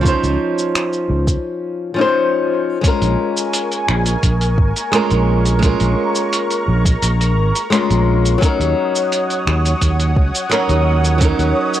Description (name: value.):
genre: sunset chillout.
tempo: 86 BPM.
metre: 4/4.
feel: straight.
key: Bb minor.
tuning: A4 = 442 Hz.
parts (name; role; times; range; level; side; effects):
flamenco guitar; accompaniment; 0.0-11.8 s; F3 to C5; -18 LUFS; moving between left 5 dB and right 4 dB; auto-pan, analog delay.
sustaining fretless electric bass; bass; 0.0-11.5 s; Ab1 to Eb2; -16 LUFS; equal; ensemble chorus.
electronic kick drum; drums; 0.0-11.4 s; none; -16 LUFS; equal; overdrive.
dusty soul sampler-style drum kit; drums; 0.1-11.8 s; cabasa, finger snaps, hi-hat; -22 LUFS; equal; none.
lush unison pad; sustained chords; 2.8-11.8 s; Bb4 to Eb6; -22 LUFS; equal; chorus, phaser.
room: little or no reverb.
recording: dry, gritty hardware recording, cassette tape.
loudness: -14 LUFS.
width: side -12 dB against mid.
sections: 0.0-2.8 A section; 2.8-11.8 B section.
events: filter sweep on nylon-string guitar 0.0-2.8.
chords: 0.0 Dbmaj9; 2.8 Bbm7; 8.4 Ebm7.